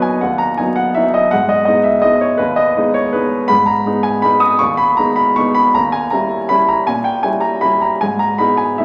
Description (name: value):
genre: classical, piano waltz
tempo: 161 BPM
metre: 3/4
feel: uneven beats, rubato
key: G# minor from 3.5 s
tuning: A4 = 439 Hz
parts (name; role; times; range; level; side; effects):
- warm grand piano; solo; 0.0-8.8 s; D#2 to D#6; -15 LUFS; equal; none
room: wet recital hall reverb, RT60 1.9 s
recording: vinyl crackle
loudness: -15 LUFS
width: mono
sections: 0.0-8.8 A section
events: none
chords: 0.0 B/D#; 5.8 D#7b9; 8.0 G#m